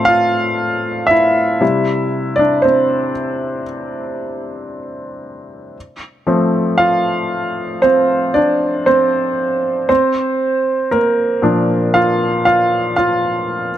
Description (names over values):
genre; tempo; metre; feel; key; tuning
pop; 58 BPM; 4/4; straight; F major; A4 = 441 Hz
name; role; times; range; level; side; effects
clear grand piano; solo; 0.0-13.8 s; A2 to F5; -14 LUFS; equal; none
room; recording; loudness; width
light reverb; none; -13 LUFS; side -11 dB against mid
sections
0.0-13.8 A section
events
grand piano solo 0.0-13.8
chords
0.0 F/A; 1.6 C; 5.8 F; 9.9 Bb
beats
0.59 | 1.62 2.65 3.67 4.71 | 5.76 6.79 7.83 8.87 | 9.90 10.92 11.95 12.97